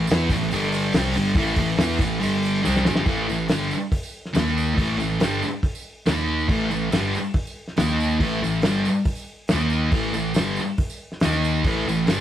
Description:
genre	garage rock duo or trio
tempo	140 BPM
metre	4/4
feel	straight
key	unclear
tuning	A4 = 441 Hz
part	thick fuzz guitar	riff	0.0-12.2 s	G2 to E4	-22 LUFS	equal	distortion
part	hollow-body short-scale fingered electric bass	bass	0.0-12.2 s	G1 to E2	-30 LUFS	equal	overdrive
part	cloth-damped thuddy drum kit	drums	0.1-12.2 s	hi-hat, kick drum, snare drum	-24 LUFS	equal	none
part	tambourine	percussion	0.1-12.2 s	none	-40 LUFS	right 5 dB	none
room	moderate stone room reverb, RT60 1.1 s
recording	rough rehearsal-room recording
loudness	-20 LUFS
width	side -11 dB against mid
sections	0.0-3.1 A section; 3.1-12.2 B section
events	drum fill 2.6-3.1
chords	0.0 A5; 0.5 G5; 0.9 A5; 2.2 G5; 2.6 Gsus4; 3.1 A5; 4.4 D#5; 4.8 A5; 6.1 D#5; 6.5 A5; 7.8 D#5; 8.2 A5; 9.5 D#5; 9.9 A5; 11.2 D#5; 11.7 A5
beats	0.08 0.51 0.94 | 1.36 1.79 2.22 2.64 | 3.07 3.50 3.93 4.35 | 4.78 5.21 5.64 6.07 | 6.50 6.92 7.35 7.78 | 8.21 8.64 9.07 9.50 | 9.93 10.36 10.79 11.22 | 11.65 12.08

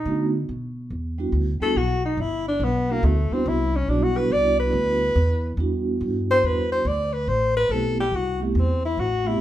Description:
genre	jazz, small-group swing and bop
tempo	141 BPM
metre	4/4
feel	swing 66% on 8ths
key	E minor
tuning	A4 = 438 Hz
part	clear alto saxophone	melody	0.0-9.4 s	A3 to D5	-23 LUFS	left 1 dB	none
part	vibraphone with soft mallets	accompaniment	0.1-9.4 s	G3 to G4	-26 LUFS	right 3 dB	none
part	upright bass	bass	0.1-9.4 s	G1 to D3	-25 LUFS	equal	none
room	moderate large studio reverb, RT60 0.8 s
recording	band playing live in one room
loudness	-20 LUFS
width	side -13 dB against mid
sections	0.5-9.4 A section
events	alto saxophone solo 0.5-9.4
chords	0.5 Em7; 7.3 Am7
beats	0.07 | 0.49 0.91 1.34 1.76 | 2.19 2.61 3.04 3.46 | 3.88 4.31 4.73 5.16 | 5.58 6.01 6.43 6.86 | 7.28 7.70 8.13 8.55 | 8.98 9.40

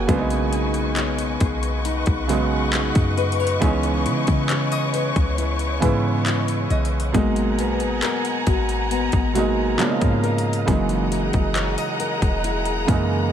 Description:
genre	contemporary R&B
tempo	68 BPM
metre	4/4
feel	straight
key	B major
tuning	A4 = 444 Hz
part	felt-muted upright piano	accompaniment	0.0-13.3 s	B2 to A#4	-24 LUFS	right 5 dB	none
part	warm studio string section	sustained chords	0.0-13.3 s	G#4 to C#6	-27 LUFS	left 1 dB	none
part	nylon-string guitar	arpeggios	0.0-13.3 s	C#3 to D#5	-27 LUFS	left 9 dB	tape echo
part	clean 808-style bass	bass	0.0-13.3 s	E1 to C#3	-24 LUFS	equal	none
part	trap drum kit	drums	0.1-13.1 s	handclaps, hi-hat, kick drum	-24 LUFS	left 1 dB	overdrive
room	studio ambience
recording	none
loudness	-19 LUFS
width	side -9 dB against mid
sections	0.0-13.3 A section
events	none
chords	0.1 B69; 3.6 C#m9; 7.1 G#m9; 9.8 C#13; 10.7 F#13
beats	| 0.09 0.97 1.85 2.73 | 3.62 4.50 5.38 6.26 | 7.14 8.03 8.91 9.79 | 10.68 11.56 12.44 13.32

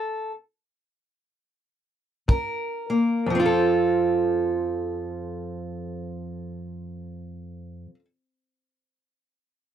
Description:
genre	acoustic country blues, solo or duo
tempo	free time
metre	none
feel	none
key	F major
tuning	A4 = 439 Hz
part	fingerpicked steel-string acoustic guitar	accompaniment	0.0-8.0 s	F2 to Bb4	-24 LUFS	right 1 dB	none
part	kick drum	drums	2.3-2.6 s	none	-18 LUFS	equal	none
room	light reverb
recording	dry, close 1970s-style studio recording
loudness	-22 LUFS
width	side -9 dB against mid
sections	0.0-3.3 A section; 3.3-7.3 B section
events	slowing down 0.0-3.3; stop 0.0-2.3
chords	0.0 F; 2.3 Gb; 3.3 F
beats	free time

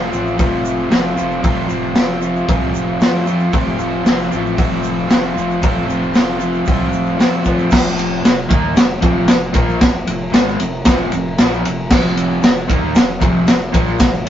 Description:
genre	garage rock duo or trio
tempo	115 BPM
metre	4/4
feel	straight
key	F mixolydian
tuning	A4 = 439 Hz
part	crunchy overdriven guitar	riff	0.0-14.3 s	F2 to F4	-18 LUFS	equal	none
part	fuzz fingered electric bass	bass	0.0-14.3 s	F1 to F2	-25 LUFS	equal	overdrive
part	egg shaker	percussion	0.1-14.2 s	none	-40 LUFS	right 5 dB	none
part	raw garage drum kit	drums	0.4-14.3 s	crash cymbal, hi-hat, kick drum, ride cymbal, snare drum	-15 LUFS	equal	none
room	light reverb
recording	rough rehearsal-room recording, nothing above 7.6 kHz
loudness	-13 LUFS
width	side -10 dB against mid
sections	0.0-7.7 A section; 7.7-14.3 B section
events	none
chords	0.0 F; 7.7 F5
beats	0.39 0.91 | 1.43 1.96 2.48 3.00 | 3.53 4.05 4.57 5.10 | 5.62 6.14 6.67 7.19 | 7.71 8.24 8.76 9.29 | 9.81 10.33 10.85 11.38 | 11.90 12.42 12.95 13.47 | 13.99

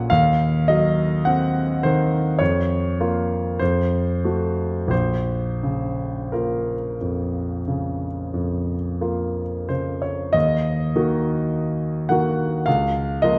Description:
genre	classical, romantic nocturne for solo piano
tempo	42-54 BPM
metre	4/4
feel	rubato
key	Bb minor, Eb minor from 10.3 s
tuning	A4 = 440 Hz
part	warm concert grand piano	solo	0.0-13.4 s	Bb1 to Ab5	-22 LUFS	equal	none
room	moderate recital hall reverb, RT60 1.8 s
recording	none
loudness	-22 LUFS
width	mono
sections	0.0-10.3 A section; 10.3-13.4 B section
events	none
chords	0.1 Cdim/Eb; 2.4 Bbm/F; 3.6 F; 4.9 Bbm; 10.3 Ebm; 12.7 Bbm/Db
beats	| 0.10 1.27 2.40 3.60 | 4.91 6.33 7.67 9.01 | 10.35 11.52 12.66

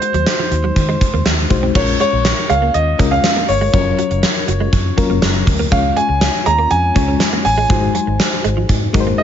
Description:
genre	1980s-style pop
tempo	121 BPM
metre	4/4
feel	straight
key	unclear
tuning	A4 = 440 Hz
part	clear concert grand piano	melody	0.0-9.2 s	C5 to Bb5	-18 LUFS	right 1 dB	ping-pong delay
part	FM electric piano with tremolo	accompaniment	0.0-9.2 s	Gb3 to Db5	-21 LUFS	left 8 dB	none
part	direct-recorded clean electric guitar	riff	0.0-9.2 s	F3 to Db4	-25 LUFS	right 7 dB	ensemble chorus
part	gated 80s drum kit	drums	0.0-9.1 s	crash cymbal, hi-hat, kick drum, snare drum	-17 LUFS	right 1 dB	none
part	vintage muted fingered electric bass	bass	0.1-9.1 s	Gb1 to Eb3	-19 LUFS	equal	none
room	light reverb, small room reverb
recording	nothing above 7.6 kHz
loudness	-13 LUFS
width	side -9 dB against mid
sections	0.0-1.8 A section; 1.8-9.2 B section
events	none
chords	0.0 Ab7/Eb; 1.8 Bbm7; 3.7 Gbmaj7; 5.7 Db; 7.7 Ab7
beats	0.27 0.76 1.26 | 1.75 2.25 2.74 3.24 | 3.74 4.23 4.73 5.22 | 5.72 6.21 6.71 7.21 | 7.70 8.20 8.69 9.19

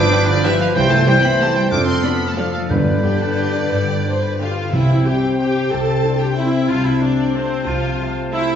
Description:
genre	classical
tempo	168-202 BPM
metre	3/4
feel	rubato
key	C major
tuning	A4 = 442 Hz
part	rich studio violin section	melody	0.0-8.6 s	C5 to D6	-26 LUFS	equal	none
part	hollow concert flute	second line	0.0-8.6 s	G5 to G6	-26 LUFS	left 1 dB	none
part	mellow clarinet	second line	0.0-8.6 s	A4 to C5	-27 LUFS	left 3 dB	none
part	mellow bassoon	accompaniment	0.0-8.6 s	C3 to F3	-26 LUFS	right 2 dB	none
part	mellow French horn section	sustained chords	0.0-8.6 s	D3 to E4	-24 LUFS	left 2 dB	none
part	warm trombone section	sustained chords	0.0-8.4 s	E3 to D4	-30 LUFS	right 4 dB	none
part	concert harp	arpeggios	0.0-8.6 s	F2 to D6	-24 LUFS	left 4 dB	none
part	clear trumpet section	stabs	0.0-8.4 s	A4 to C5	-27 LUFS	equal	none
part	clear chamber double bass section	bass	0.0-7.9 s	C2 to G2	-26 LUFS	right 3 dB	none
part	warm studio cello section	bass	0.0-7.9 s	C3 to D4	-25 LUFS	right 2 dB	none
part	rich chamber violin section	second line	0.1-8.6 s	G4 to A5	-29 LUFS	left 2 dB	none
part	rich chamber viola section	accompaniment	0.1-8.6 s	D3 to A4	-23 LUFS	right 1 dB	none
part	timpani	percussion	0.8-5.2 s	G2 to C3	-23 LUFS	equal	none
room	wet recital hall reverb, RT60 1.4 s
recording	heard from further back in the room, nothing above 7.7 kHz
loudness	-15 LUFS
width	side -8 dB against mid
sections	0.0-4.7 A section; 4.7-8.6 B section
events	none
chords	0.0 G7; 0.8 C; 1.7 Dm/F; 2.7 G; 4.7 C; 6.7 F/C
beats	0.12 0.45 | 0.76 1.07 1.40 | 1.71 2.03 2.37 | 2.70 3.03 3.39 | 3.71 4.05 4.40 | 4.72 5.04 5.38 | 5.71 6.03 6.37 | 6.69 7.01 7.35 | 7.66 7.99 8.33

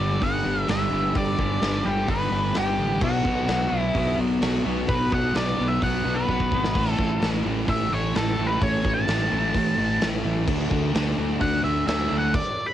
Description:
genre	quiet-loud alternative rock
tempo	129 BPM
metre	4/4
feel	straight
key	B minor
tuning	A4 = 440 Hz
part	octave-fuzz lead guitar	melody	0.0-12.7 s	F#4 to B5	-27 LUFS	equal	distortion, cassette tape, tape echo
part	clean electric guitar	arpeggios	0.0-6.8 s	G2 to G4	-33 LUFS	left 2 dB	lush chorus, cassette tape
part	overdriven electric guitar	riff	0.0-12.3 s	G2 to D4	-29 LUFS	left 7 dB	cassette tape
part	thick fuzz guitar	riff	0.0-12.3 s	G2 to D4	-29 LUFS	right 8 dB	distortion, cassette tape
part	fuzz fingered electric bass	bass	0.0-12.3 s	G1 to D2	-28 LUFS	equal	overdrive, transformer saturation
part	big rock drum kit	drums	0.2-12.4 s	crash cymbal, hi-hat, kick drum, snare drum	-28 LUFS	equal	cassette tape
room	light reverb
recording	home recording on cassette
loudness	-21 LUFS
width	side -11 dB against mid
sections	0.0-12.7 A section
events	lead electric guitar solo 0.0-12.7; drum fill 6.3-6.8; stop 12.3-12.7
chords	0.0 G; 3.0 Bm; 6.8 A5; 10.5 D5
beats	0.22 0.69 | 1.16 1.62 2.09 2.56 | 3.02 3.49 3.96 4.42 | 4.89 5.35 5.82 6.29 | 6.75 7.22 7.68 8.15 | 8.62 9.08 9.55 10.02 | 10.48 10.95 11.41 11.88 | 12.34

